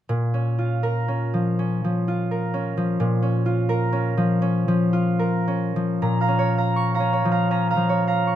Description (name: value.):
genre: classical, solo harp piece.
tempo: 68-88 BPM.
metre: 4/4.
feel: rubato.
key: Bb minor.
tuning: A4 = 441 Hz.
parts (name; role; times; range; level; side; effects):
concert harp; solo; 0.1-8.4 s; Bb2 to Db6; -20 LUFS; equal; none.
room: light reverb.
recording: close, detailed microphones.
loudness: -20 LUFS.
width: side -11 dB against mid.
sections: 0.1-6.0 A section; 6.0-8.4 B section.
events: none.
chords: 0.1 Bbm.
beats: | 0.09 0.84 1.59 2.31 | 3.00 3.70 4.43 5.20 | 6.04 6.78 7.53 8.28.